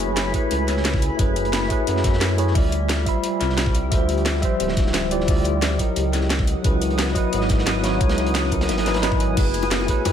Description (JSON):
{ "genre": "liquid drum and bass", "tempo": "176 BPM", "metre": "4/4", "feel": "straight", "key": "F# dorian", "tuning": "A4 = 436 Hz", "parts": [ { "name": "mellow tine electric piano", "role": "accompaniment", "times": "0.0-10.1 s", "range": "F3 to B5", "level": "-24 LUFS", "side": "equal", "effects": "medium stereo tremolo, tape echo" }, { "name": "shimmering ambient pad", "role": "sustained chords", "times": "0.0-10.1 s", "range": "A3 to E6", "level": "-29 LUFS", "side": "left 1 dB", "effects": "chorus, built-in reverb, phaser, vintage 12-bit sampler grit, sidechain pumping" }, { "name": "vibraphone with medium mallets", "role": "arpeggios", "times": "0.0-10.1 s", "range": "E4 to C#5", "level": "-30 LUFS", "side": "left 5 dB", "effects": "dub echo" }, { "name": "dark detuned saw bass", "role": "bass", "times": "0.0-10.1 s", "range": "D1 to F#2", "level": "-24 LUFS", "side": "equal", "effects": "none" }, { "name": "crunchy breakbeat drum kit", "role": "drums", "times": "0.0-10.1 s", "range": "hi-hat, snare drum", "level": "-32 LUFS", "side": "equal", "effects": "high-pass filter on hats, high-pass filter on snare, high-pass filter on room" }, { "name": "drum and bass drum kit", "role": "drums", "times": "0.0-10.1 s", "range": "crash cymbal, hi-hat, snare drum", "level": "-26 LUFS", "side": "equal", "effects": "none" }, { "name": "downlifter", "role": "sound effects", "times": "0.0-1.2 s", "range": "none", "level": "barely audible", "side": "none", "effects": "none" }, { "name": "electronic kick drum", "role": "drums", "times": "0.3-10.0 s", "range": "none", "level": "-22 LUFS", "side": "equal", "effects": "none" }, { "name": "bongos", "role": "percussion", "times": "9.4-10.1 s", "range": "none", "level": "-29 LUFS", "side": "left 6 dB", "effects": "none" } ], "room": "light reverb, small room ambience", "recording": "none", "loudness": "-18 LUFS", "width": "side -9 dB against mid", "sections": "0.0-10.1 A section", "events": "none", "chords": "0.0 F#m11; 2.6 Dm11; 5.8 C#m11; 9.4 F#m11" }